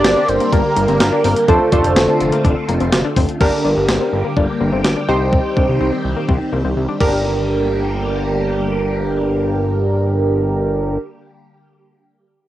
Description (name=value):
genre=synth-pop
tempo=125 BPM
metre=4/4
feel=straight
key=G minor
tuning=A4 = 440 Hz
part: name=fat analog lead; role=melody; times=0.0-2.9 s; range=A4 to D5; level=-17 LUFS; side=right 1 dB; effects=chorus, cassette tape, analog delay
part: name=funky polysynth comp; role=accompaniment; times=0.0-11.0 s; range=D4 to D5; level=-18 LUFS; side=right 1 dB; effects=chorus, cassette tape
part: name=phased string machine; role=sustained chords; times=0.0-11.0 s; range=D3 to G4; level=-23 LUFS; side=equal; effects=ensemble chorus, phaser, cassette tape
part: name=analog pluck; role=arpeggios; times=0.0-11.1 s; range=G3 to G4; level=-24 LUFS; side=left 6 dB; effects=chorus, cassette tape, analog delay
part: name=fat analog bass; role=bass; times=0.0-11.0 s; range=F1 to C2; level=-20 LUFS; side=equal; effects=none
part: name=clean 12-bit digital drum machine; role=drums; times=0.0-7.1 s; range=crash cymbal, hi-hat, kick drum, snare drum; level=-18 LUFS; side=equal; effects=cassette tape
room=moderate studio reverb, RT60 0.6 s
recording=home recording on cassette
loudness=-14 LUFS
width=side -13 dB against mid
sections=0.0-3.4 A section; 3.4-7.2 B section; 7.2-11.1 C section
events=none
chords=0.0 Gm; 1.5 F6; 3.4 Gm; 5.1 Cm; 7.0 Gm